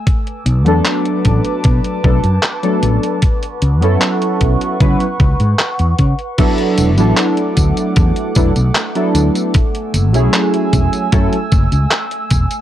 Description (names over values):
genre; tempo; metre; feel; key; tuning
vaporwave; 76 BPM; 4/4; straight; unclear; A4 = 440 Hz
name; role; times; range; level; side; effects
warbly tape-like pad; sustained chords; 0.0-12.6 s; A3 to E6; -23 LUFS; right 2 dB; chorus, built-in reverb, phaser, vintage 12-bit sampler grit
detuned 8-bit digital drum machine; drums; 0.1-12.6 s; crash cymbal, handclaps, hi-hat, tambourine; -19 LUFS; equal; none
electronic kick drum; drums; 0.1-12.5 s; none; -15 LUFS; equal; none
mellow fretless electric bass; bass; 0.5-12.4 s; E1 to C#3; -14 LUFS; equal; none
warbly lo-fi synth keys; accompaniment; 0.6-11.4 s; F#3 to B4; -16 LUFS; right 1 dB; wide subtle chorus, tape echo
room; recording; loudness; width
little or no reverb; dry, gritty hardware recording, cassette tape; -12 LUFS; side -12 dB against mid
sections
0.0-6.4 A section; 6.4-12.6 B section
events
none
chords
0.1 Bm7; 3.2 A69; 6.4 E9sus4; 9.5 F#m9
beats
| 0.07 0.86 1.65 2.44 | 3.23 4.02 4.81 5.60 | 6.39 7.18 7.96 8.75 | 9.54 10.33 11.12 11.91